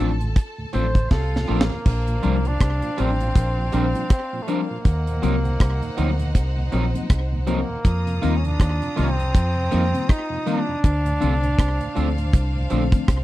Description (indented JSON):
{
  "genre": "lovers rock reggae",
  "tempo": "80 BPM",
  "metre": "4/4",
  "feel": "swing 58% on 16ths",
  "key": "Bb major",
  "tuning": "A4 = 440 Hz",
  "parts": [
    { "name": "breathy flugelhorn", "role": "melody", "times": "0.0-12.7 s", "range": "A3 to C5", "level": "-28 LUFS", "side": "equal", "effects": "tape echo" },
    { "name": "warm symphonic violin section", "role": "second line", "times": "0.0-13.2 s", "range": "D4 to Eb6", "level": "-34 LUFS", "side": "equal", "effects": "none" },
    { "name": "mellow FM electric piano", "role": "accompaniment", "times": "0.0-13.0 s", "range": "D3 to D4", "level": "-26 LUFS", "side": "left 6 dB", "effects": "chorus, phaser" },
    { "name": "mellow tonewheel organ", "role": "accompaniment", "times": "0.0-13.0 s", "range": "D2 to Eb4", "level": "-32 LUFS", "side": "right 3 dB", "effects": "none" },
    { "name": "electric guitar through a small old amp", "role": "stabs", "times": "0.0-12.8 s", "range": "F3 to Bb4", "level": "-28 LUFS", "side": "right 4 dB", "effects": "none" },
    { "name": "deep dub fingered electric bass", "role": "bass", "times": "0.0-13.2 s", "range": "A1 to F2", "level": "-22 LUFS", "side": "equal", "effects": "none" },
    { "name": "deep reggae drum kit", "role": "drums", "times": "0.2-13.2 s", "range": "crash cymbal, hi-hat, kick drum, rim click, snare drum", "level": "-18 LUFS", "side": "equal", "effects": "none" }
  ],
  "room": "little or no reverb",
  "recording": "dry, close 1970s-style studio recording",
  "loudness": "-19 LUFS",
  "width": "side -16 dB against mid",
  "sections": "0.0-1.9 A section; 1.9-13.2 B section",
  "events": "flugelhorn solo 0.0-1.9; drum fill 1.1-1.9",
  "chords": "0.0 Dm7; 1.9 Bb69; 4.9 Ebm6; 7.8 F7sus4; 10.8 Dm7"
}